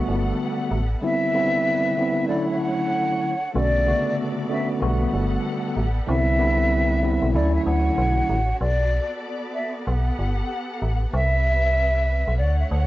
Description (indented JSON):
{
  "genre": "hip hop",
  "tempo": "95 BPM",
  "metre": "4/4",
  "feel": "swing 61% on 16ths",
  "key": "unclear",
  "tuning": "A4 = 440 Hz",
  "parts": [
    { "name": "mellow tine electric piano", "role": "accompaniment", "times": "0.0-8.4 s", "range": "C#3 to F#4", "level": "-23 LUFS", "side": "equal", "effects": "medium stereo tremolo, high-pass filter, low-pass filter, cassette tape" },
    { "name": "warm studio string section", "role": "sustained chords", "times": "0.0-12.9 s", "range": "C3 to F#5", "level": "-32 LUFS", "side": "left 1 dB", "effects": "high-pass filter, low-pass filter, cassette tape" },
    { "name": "metallic FM bass", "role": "bass", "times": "0.1-12.9 s", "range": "G1 to D2", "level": "-22 LUFS", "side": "equal", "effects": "tube saturation" },
    { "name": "breathy concert flute", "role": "melody", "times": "1.0-12.9 s", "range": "D5 to F#5", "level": "-24 LUFS", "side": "equal", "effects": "high-pass filter, low-pass filter" }
  ],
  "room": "light reverb",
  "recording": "home recording on cassette, nothing above 7.7 kHz",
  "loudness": "-20 LUFS",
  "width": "side -16 dB against mid",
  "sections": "0.0-3.6 A section; 3.6-12.9 B section",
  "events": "none",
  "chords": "0.0 Gmaj7; 1.0 Cmaj7; 2.3 Dmaj7; 3.6 Bm7; 4.8 Gmaj7; 6.1 Cmaj7; 7.3 Dmaj7; 8.6 Bm7; 9.9 Gmaj7; 11.1 Cmaj7"
}